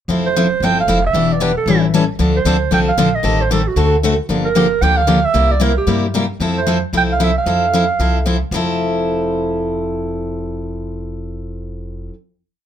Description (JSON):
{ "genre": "acoustic string swing (jazz manouche)", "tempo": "228 BPM", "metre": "4/4", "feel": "swing 55% on 8ths", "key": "F major", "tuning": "A4 = 440 Hz", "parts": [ { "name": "picked steel-string acoustic guitar", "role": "accompaniment", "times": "0.1-12.1 s", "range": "C3 to A4", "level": "-17 LUFS", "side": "left 2 dB", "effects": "none" }, { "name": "upright bass", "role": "bass", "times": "0.1-12.1 s", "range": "E1 to G2", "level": "-21 LUFS", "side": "equal", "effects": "none" }, { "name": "mellow clarinet", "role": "melody", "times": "0.3-8.2 s", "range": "Gb4 to G5", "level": "-17 LUFS", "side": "right 5 dB", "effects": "plate reverb" } ], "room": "moderate club reverb, RT60 0.5 s", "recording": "none", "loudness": "-14 LUFS", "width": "side -10 dB against mid", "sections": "0.1-8.5 A section; 8.5-10.6 final chord", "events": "none", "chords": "0.1 Fmaj7; 1.1 Em7; 1.7 A7; 2.2 Dm7; 3.2 Am7b5; 3.8 D7; 4.3 Gm7; 5.3 C7; 6.4 Fmaj7" }